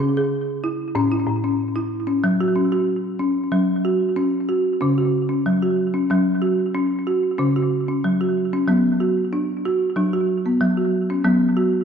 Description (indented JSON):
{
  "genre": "world meditative, meditative tuned percussion",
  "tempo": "93 BPM",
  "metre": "4/4",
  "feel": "straight",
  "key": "F# minor",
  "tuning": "A4 = 440 Hz",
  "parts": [
    { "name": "folk marimba with medium hard mallets", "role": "solo", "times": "0.0-11.8 s", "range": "A2 to G#4", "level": "-18 LUFS", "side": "equal", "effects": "tape echo" }
  ],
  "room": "wet scoring stage reverb, RT60 1.9 s, small room ambience",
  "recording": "dark, warm production",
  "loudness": "-18 LUFS",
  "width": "side -7 dB against mid",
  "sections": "0.0-3.5 A section; 3.5-11.8 B section",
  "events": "none",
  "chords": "0.0 C#m; 1.0 A; 2.2 F#5; 8.7 Bm/F#"
}